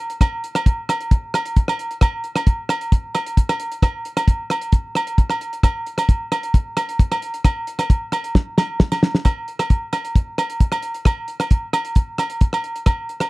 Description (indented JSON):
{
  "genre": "highlife",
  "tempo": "133 BPM",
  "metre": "4/4",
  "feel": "straight",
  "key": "none",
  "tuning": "none",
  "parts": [
    { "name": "cloth-damped thuddy drum kit", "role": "drums", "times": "0.1-13.3 s", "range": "hi-hat, kick drum, rim click, snare drum", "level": "-16 LUFS", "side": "equal", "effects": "none" },
    { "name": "agogo bells", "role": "percussion", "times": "0.2-13.3 s", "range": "none", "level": "-24 LUFS", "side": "right 2 dB", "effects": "none" }
  ],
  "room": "little or no reverb",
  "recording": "dry, close 1970s-style studio recording",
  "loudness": "-18 LUFS",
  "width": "side -21 dB against mid",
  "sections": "0.0-9.3 A section; 9.3-13.3 B section",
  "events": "drum fill 8.3-9.3",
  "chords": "none"
}